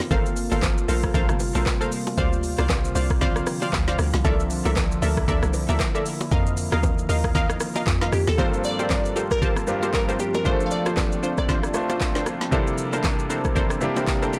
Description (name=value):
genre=amapiano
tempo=116 BPM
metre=4/4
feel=swing 58% on 16ths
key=G minor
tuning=A4 = 441 Hz
part: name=deep dark ambient pad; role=sustained chords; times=0.0-14.4 s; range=C3 to A5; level=-33 LUFS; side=equal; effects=chorus, built-in reverb, sidechain pumping
part: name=deep house drum kit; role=drums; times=0.0-14.4 s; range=handclaps, hi-hat, kick drum, rim click, shaker, snare drum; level=-28 LUFS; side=equal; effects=none
part: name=bongos and congas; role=percussion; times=0.0-14.4 s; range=none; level=-33 LUFS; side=equal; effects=none
part: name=punchy chord stab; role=stabs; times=0.1-14.3 s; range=D4 to A5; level=-31 LUFS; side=equal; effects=chorus, digital delay
part: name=hollow log drum bass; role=bass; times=0.1-8.4 s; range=G1 to F2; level=-27 LUFS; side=equal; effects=none
part: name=glassy wavetable pluck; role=melody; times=8.1-14.4 s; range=G4 to F5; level=-30 LUFS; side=equal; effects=chorus, digital delay
part: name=bright concert grand piano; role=accompaniment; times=8.4-14.4 s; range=G2 to C5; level=-30 LUFS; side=equal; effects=none
room=light reverb, digital ambience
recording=blown-out, overdriven recording, overdrive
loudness=-23 LUFS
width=mono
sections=0.0-8.4 A section; 8.4-14.4 B section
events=drop 0.0-8.4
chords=0.1 Gm11; 2.2 Dm7; 4.2 C13; 6.3 F7sus4; 8.4 Gm11; 10.5 Dm7; 12.5 C13